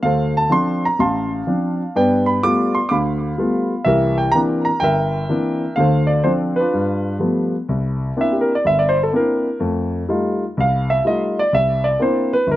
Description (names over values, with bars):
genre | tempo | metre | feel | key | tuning
solo jazz | 125 BPM | 4/4 | swing 68% on 8ths | C mixolydian | A4 = 443 Hz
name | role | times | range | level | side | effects
warm grand piano | solo | 0.0-12.6 s | G1 to D6 | -16 LUFS | equal | none
room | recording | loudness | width
light reverb | recorded outdoors, with no room sound | -16 LUFS | side -14 dB against mid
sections
0.0-7.7 A section; 7.7-12.6 B section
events
grand piano solo 7.7-12.6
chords
0.0 Dm7; 1.9 G9; 3.9 C9; 5.8 Dm7; 6.7 G9; 7.7 C9; 9.6 F9; 11.5 C9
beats
| 0.03 0.51 0.99 1.47 | 1.95 2.42 2.90 3.38 | 3.86 4.34 4.82 5.29 | 5.77 6.25 6.73 7.21 | 7.69 8.17 8.65 9.13 | 9.61 10.08 10.56 11.04 | 11.52 12.00 12.48